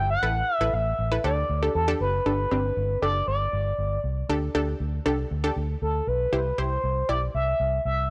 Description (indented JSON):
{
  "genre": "synth-pop",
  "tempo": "118 BPM",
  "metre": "4/4",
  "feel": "straight",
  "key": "G major",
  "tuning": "A4 = 440 Hz",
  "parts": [
    { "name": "expressive synth lead", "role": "melody", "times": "0.0-8.1 s", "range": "A4 to F#5", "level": "-28 LUFS", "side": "equal", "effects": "chorus" },
    { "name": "unison pluck", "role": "accompaniment", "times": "0.0-7.8 s", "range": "C4 to D5", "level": "-31 LUFS", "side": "equal", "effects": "none" },
    { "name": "vintage muted fingered electric bass", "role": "bass", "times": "0.0-8.1 s", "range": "F#1 to E2", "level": "-30 LUFS", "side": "equal", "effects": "none" }
  ],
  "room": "little or no reverb",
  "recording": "dry, gritty hardware recording, transformer saturation",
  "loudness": "-26 LUFS",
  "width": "mono",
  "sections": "0.0-2.3 A section; 2.3-8.1 B section",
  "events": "none",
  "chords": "0.2 Asus2; 1.2 Dsus4; 2.3 Gsus2; 4.3 Dsus4; 6.3 C"
}